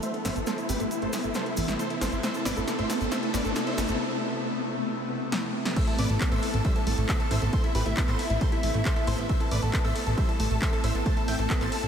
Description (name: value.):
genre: uplifting trance.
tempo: 136 BPM.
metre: 4/4.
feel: straight.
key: A minor.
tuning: A4 = 440 Hz.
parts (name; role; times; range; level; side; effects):
big supersaw lead; melody; 0.0-11.9 s; E4 to A5; -34 LUFS; equal; sidechain pumping, low-pass filter, ping-pong delay.
analog pluck; arpeggios; 0.0-11.7 s; E3 to A4; -35 LUFS; right 4 dB; chorus, sidechain pumping, tape echo.
punchy analog drum machine; drums; 0.0-11.9 s; crash cymbal, handclaps, hi-hat, snare drum; -33 LUFS; equal; none.
cabasa; percussion; 0.0-4.0 s; none; -42 LUFS; right 1 dB; none.
riser; sound effects; 0.0-4.0 s; none; -41 LUFS; equal; none.
plucky analog bass; bass; 0.2-11.9 s; A1; -29 LUFS; equal; sidechain pumping.
plucky unison lead; second line; 5.8-11.9 s; E5 to A6; -36 LUFS; left 1 dB; sidechain pumping, tape echo.
electronic kick drum; drums; 5.8-11.6 s; none; -27 LUFS; equal; none.
room: wet huge ambient reverb, RT60 7.2 s.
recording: dreamy mix soaked in reverb.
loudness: -24 LUFS.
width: side -8 dB against mid.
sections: 0.0-5.8 A section; 5.8-11.9 B section.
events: build-up 0.0-5.8; drum fill 0.0-4.0, 5.3-5.8; filter sweep on supersaw synth 0.0-5.8; drop 5.8-11.9.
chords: 0.0 Amadd9.